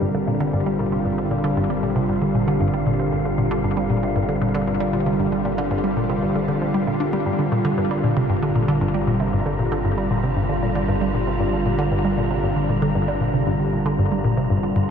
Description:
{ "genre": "ambient, sequencer-driven space music", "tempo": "116 BPM", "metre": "4/4", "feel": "straight", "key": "G minor", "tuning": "A4 = 438 Hz", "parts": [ { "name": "lush unison pad", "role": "sustained chords", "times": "0.0-14.9 s", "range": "D3 to Bb4", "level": "-23 LUFS", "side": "equal", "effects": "chorus" }, { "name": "hollow square pluck", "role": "riff", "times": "0.0-14.8 s", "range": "G2 to D4", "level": "-22 LUFS", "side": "equal", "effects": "chorus, phaser, cassette tape, ping-pong delay" }, { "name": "round analog bass", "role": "bass", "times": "0.0-14.9 s", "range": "G1", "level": "-32 LUFS", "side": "equal", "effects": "tube saturation" }, { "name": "wind-like tuned noise texture", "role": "texture", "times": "0.0-14.9 s", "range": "F4 to Bb5", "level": "-29 LUFS", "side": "right 3 dB", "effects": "built-in reverb" } ], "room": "wet cathedral reverb, RT60 6.3 s", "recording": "in a vast, echoing space", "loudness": "-19 LUFS", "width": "side -7 dB against mid", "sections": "0.0-14.9 A section", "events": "none", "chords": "0.0 Gm" }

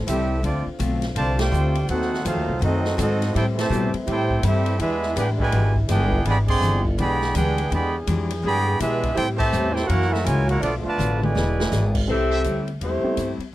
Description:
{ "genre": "jazz, big band swing", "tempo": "165 BPM", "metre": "4/4", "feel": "swing 63% on 8ths", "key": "A minor", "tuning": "A4 = 436 Hz", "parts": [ { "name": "mellow trombone section", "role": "sustained chords", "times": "0.0-12.1 s", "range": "D3 to C5", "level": "-32 LUFS", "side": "left 1 dB", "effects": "none" }, { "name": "upright bass", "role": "bass", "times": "0.0-13.4 s", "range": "E1 to B2", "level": "-23 LUFS", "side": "equal", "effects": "none" }, { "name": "clear trumpet section", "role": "melody", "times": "0.1-12.0 s", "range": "B3 to C6", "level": "-25 LUFS", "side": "right 2 dB", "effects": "none" }, { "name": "warm trombone section", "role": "second line", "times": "0.1-11.9 s", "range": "B2 to A4", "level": "-28 LUFS", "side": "right 3 dB", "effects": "none" }, { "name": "picked steel-string acoustic guitar", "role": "accompaniment", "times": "0.1-13.5 s", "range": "F#2 to G#4", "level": "-30 LUFS", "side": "left 4 dB", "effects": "none" }, { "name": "swinging big-band drum kit", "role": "drums", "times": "0.1-13.5 s", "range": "crash cymbal, hi-hat, kick drum, ride cymbal, snare drum, toms", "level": "-31 LUFS", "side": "equal", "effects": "none" }, { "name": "mellow saxophone section", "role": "melody", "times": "12.1-13.4 s", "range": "A3 to E5", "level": "-24 LUFS", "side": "left 2 dB", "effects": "slapback echo" }, { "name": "warm concert grand piano", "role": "accompaniment", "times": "12.1-13.2 s", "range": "G3 to B4", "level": "-30 LUFS", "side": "right 4 dB", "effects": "none" }, { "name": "brilliant trumpet section", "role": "stabs", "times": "12.3-12.4 s", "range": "G4 to E5", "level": "-29 LUFS", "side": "right 1 dB", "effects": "none" } ], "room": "little or no reverb", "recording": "dry, close 1970s-style studio recording", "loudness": "-19 LUFS", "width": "side -15 dB against mid", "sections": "0.0-12.1 A section; 12.1-13.5 B section", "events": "band accent 1.3, 3.5, 6.4, 9.3; drum fill 11.0-11.7", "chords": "0.4 Dm7; 1.9 D#dim7; 3.3 Am7; 4.8 E7#9; 9.2 Am7; 9.9 F#7; 10.6 Bm7b5; 11.4 E7; 12.1 Am7" }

